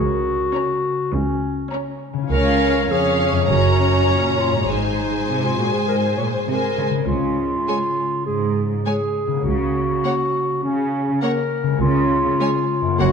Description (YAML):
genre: cinematic, playful, whimsical film cue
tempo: 101 BPM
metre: 4/4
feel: straight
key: Db major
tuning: A4 = 440 Hz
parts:
  - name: warm clarinet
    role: second line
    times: 0.0-13.1 s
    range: Db4 to Db5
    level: -22 LUFS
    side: left 1 dB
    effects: none
  - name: concert harp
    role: arpeggios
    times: 0.0-13.1 s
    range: Gb2 to Db5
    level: -26 LUFS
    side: left 6 dB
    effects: none
  - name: rich studio cello section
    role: bass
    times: 0.0-13.1 s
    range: Db2 to Db3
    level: -24 LUFS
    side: right 4 dB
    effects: none
  - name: warm studio double bass section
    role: bass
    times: 0.0-13.1 s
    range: Gb1 to Db2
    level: -25 LUFS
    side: right 5 dB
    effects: none
  - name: clear studio violin section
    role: melody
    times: 0.5-13.1 s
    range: F5 to Bb5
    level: -27 LUFS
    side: left 3 dB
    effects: none
  - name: rich studio violin section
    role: second line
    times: 0.5-13.1 s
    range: C5 to Db5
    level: -27 LUFS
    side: left 3 dB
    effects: none
  - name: rich studio viola section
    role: accompaniment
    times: 0.5-13.1 s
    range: Ab3 to Db4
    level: -26 LUFS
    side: right 2 dB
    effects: none
room: wet concert hall reverb, RT60 2.1 s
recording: dark, warm production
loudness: -17 LUFS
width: side -6 dB against mid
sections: 0.0-13.1 A section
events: none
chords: 0.0 Gb/Db; 2.3 Db; 3.5 Gb; 4.7 Ab; 7.1 Db